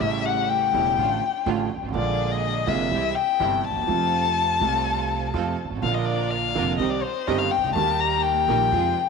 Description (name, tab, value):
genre	tango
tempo	124 BPM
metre	4/4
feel	rubato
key	Bb major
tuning	A4 = 440 Hz
part	warm violin	second line	0.0-9.1 s	C5 to Bb5	-23 LUFS	left 10 dB	tape echo
part	warm concert grand piano	accompaniment	0.0-8.9 s	E1 to G4	-26 LUFS	right 10 dB	none
part	clear symphonic string section	stabs	0.0-8.9 s	D3 to Bb4	-34 LUFS	right 9 dB	tape echo
part	upright bass	bass	0.0-8.9 s	E1 to F2	-30 LUFS	right 2 dB	none
room	moderate plate reverb, RT60 2.9 s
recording	1960s-style stereo with parts hard left and right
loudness	-21 LUFS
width	side -5 dB against mid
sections	0.0-9.1 A section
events	violin solo 0.0-9.1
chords	0.0 A7; 1.0 Dm/A; 1.9 Bb7; 2.9 C; 3.9 F; 5.8 Bb; 6.8 Cm; 7.8 Eb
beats	| 0.01 0.50 0.98 1.46 | 1.95 2.43 2.91 3.40 | 3.88 4.37 4.85 5.34 | 5.82 6.31 6.79 7.28 | 7.76 8.24 8.72